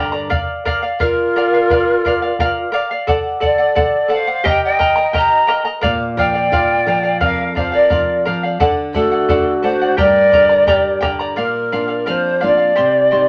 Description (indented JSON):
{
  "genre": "andean folk, Andean ensemble",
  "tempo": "87 BPM",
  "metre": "2/4",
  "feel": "straight",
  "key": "unclear",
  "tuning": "A4 = 440 Hz",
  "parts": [
    { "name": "charango", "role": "accompaniment", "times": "0.0-13.3 s", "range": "G4 to C6", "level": "-21 LUFS", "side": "equal", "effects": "none" },
    { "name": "flamenco guitar", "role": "accompaniment", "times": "0.0-0.3, 5.8-13.3 s", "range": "F2 to G4", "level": "-25 LUFS", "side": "equal", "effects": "none" },
    { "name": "bombo", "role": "percussion", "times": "0.3-11.2 s", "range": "none", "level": "-26 LUFS", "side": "equal", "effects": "none" },
    { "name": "polished pan flute", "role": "melody", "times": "1.0-13.3 s", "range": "A4 to Bb5", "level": "-17 LUFS", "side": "equal", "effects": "none" },
    { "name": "breathy bright large quena", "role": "second line", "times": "1.0-11.0 s", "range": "F4 to Eb5", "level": "-23 LUFS", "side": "equal", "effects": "none" }
  ],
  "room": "wet studio reverb, RT60 0.5 s",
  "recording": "none",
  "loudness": "-15 LUFS",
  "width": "mono",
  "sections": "0.3-11.4 A section; 11.4-13.3 B section",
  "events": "nylon-string guitar fill 13.1",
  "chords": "0.3 Bb; 3.1 D; 4.5 Eb; 5.8 Bb; 8.6 D; 10.0 Gm; 11.4 Bb; 12.8 Cm"
}